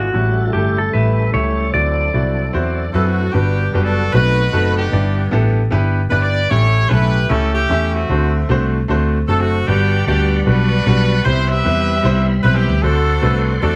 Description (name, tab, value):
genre	gospel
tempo	151 BPM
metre	4/4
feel	swing 62% on 8ths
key	G major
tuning	A4 = 440 Hz
part	clean lap steel guitar	melody	0.0-2.9 s	F#4 to D5	-22 LUFS	equal	none
part	warm baby grand piano	accompaniment	0.0-13.8 s	G2 to E5	-23 LUFS	equal	none
part	tonewheel organ	sustained chords	0.0-3.3, 9.7-13.8 s	D3 to C6	-28 LUFS	equal	slow rotary speaker, overdrive, chorus vibrato
part	fingered electric bass	bass	0.0-13.8 s	F#1 to F#2	-19 LUFS	equal	none
part	clear horn section	melody	2.9-13.8 s	A3 to E5	-22 LUFS	equal	none
room	light reverb, studio reverb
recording	none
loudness	-16 LUFS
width	mono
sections	0.0-3.3 A section; 3.3-13.8 B section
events	none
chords	0.1 A7; 1.7 D9; 3.3 Gmaj7; 4.1 B7b9; 4.9 Em7/G; 6.5 A7; 8.1 D7; 9.7 Gmaj7; 11.3 Cmaj7; 12.8 D7